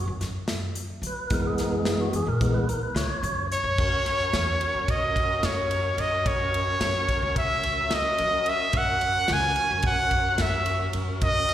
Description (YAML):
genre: progressive instrumental, band music in an uneven meter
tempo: 218 BPM (eighths)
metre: 9/8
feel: straight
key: F# mixolydian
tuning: A4 = 440 Hz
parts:
  - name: tonewheel organ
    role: accompaniment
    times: 0.0-11.5 s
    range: E3 to C#5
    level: -30 LUFS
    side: equal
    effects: slow rotary speaker, slapback echo
  - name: upright bass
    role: bass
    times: 0.0-11.5 s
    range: C#2 to F#3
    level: -30 LUFS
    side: equal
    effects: none
  - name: natural country drum kit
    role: drums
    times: 0.2-11.5 s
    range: crash cymbal, hi-hat, kick drum, ride cymbal, snare drum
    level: -30 LUFS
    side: equal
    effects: none
  - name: clear trumpet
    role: melody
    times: 3.5-11.5 s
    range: C#5 to G#5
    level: -24 LUFS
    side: equal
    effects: slapback echo
room: light reverb, small room ambience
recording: live gig heard through the venue's PA, recital hall reverb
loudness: -22 LUFS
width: side -11 dB against mid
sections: 0.0-3.8 A section; 3.8-11.5 B section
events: tonewheel organ solo 0.0-3.8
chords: 0.0 B5/F#; 1.3 F#7sus4; 3.8 F#; 8.7 D#m (rootless)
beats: 0.21 0.48 0.76 1.03 | 1.31 1.58 1.86 2.13 2.40 2.68 2.96 3.23 3.50 | 3.78 4.05 4.33 4.60 4.88 5.15 5.43 5.71 5.98 | 6.25 6.53 6.81 7.08 7.36 7.63 7.91 8.18 8.46 | 8.73 9.01 9.29 9.56 9.84 10.11 10.39 10.66 10.94 | 11.22 11.49